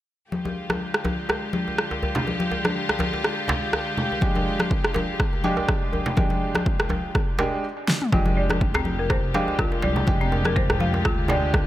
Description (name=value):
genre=afro house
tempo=123 BPM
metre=4/4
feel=swing 56% on 16ths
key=F dorian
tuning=A4 = 439 Hz
part: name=rich chamber string section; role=sustained chords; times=0.3-11.7 s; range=D3 to G4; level=-30 LUFS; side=left 1 dB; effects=sidechain pumping
part: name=congas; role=percussion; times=0.3-11.4 s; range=none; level=-29 LUFS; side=left 2 dB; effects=none
part: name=djembe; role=percussion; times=0.5-11.6 s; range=none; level=-31 LUFS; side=right 1 dB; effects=none
part: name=deep house drum kit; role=drums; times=0.7-11.6 s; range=rim click, snare drum, toms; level=-27 LUFS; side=equal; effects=overdrive
part: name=felt-muted upright piano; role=stabs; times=4.2-11.7 s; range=Ab3 to G4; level=-28 LUFS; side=right 2 dB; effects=sidechain pumping, dub echo
part: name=electronic kick drum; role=drums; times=4.2-11.6 s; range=none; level=-24 LUFS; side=equal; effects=overdrive
part: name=folk marimba with hard mallets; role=arpeggios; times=8.1-11.4 s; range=C4 to F5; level=-29 LUFS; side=left 2 dB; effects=sidechain pumping, low-pass filter, dub echo
part: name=smooth gliding synth bass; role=bass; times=8.1-11.7 s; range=D1 to C2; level=-27 LUFS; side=equal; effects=sidechain pumping
room=light reverb, small room ambience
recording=none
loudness=-21 LUFS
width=side -14 dB against mid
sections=0.3-8.1 A section; 8.1-11.7 B section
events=drum fill 7.9; filter sweep on marimba 8.1-11.7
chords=0.3 Fm69